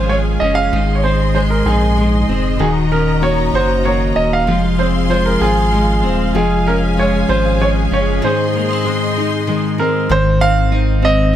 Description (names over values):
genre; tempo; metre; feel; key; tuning
six-eight pop ballad; 64 BPM (dotted quarters); 6/8; straight; unclear; A4 = 440 Hz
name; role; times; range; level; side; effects
clear baby grand piano; melody; 0.0-11.3 s; Ab4 to F5; -18 LUFS; right 2 dB; none
direct-recorded clean electric guitar; accompaniment; 0.0-11.4 s; Ab2 to Gb4; -18 LUFS; equal; double-tracked left and right
rich studio string section; sustained chords; 0.0-10.1 s; Gb4 to C6; -23 LUFS; left 2 dB; none
picked steel-string acoustic guitar; arpeggios; 0.0-11.4 s; Eb3 to Ab4; -23 LUFS; left 7 dB; none
sub bass with octave; bass; 0.0-11.4 s; Eb1 to Bb1; -18 LUFS; equal; none
room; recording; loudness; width
light reverb, studio reverb; none; -13 LUFS; side -11 dB against mid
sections
0.0-10.1 A section; 10.1-11.4 B section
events
none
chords
0.0 Db; 0.7 Ab; 2.6 Ebm7; 4.5 Fm; 6.4 Db/F; 8.2 Ab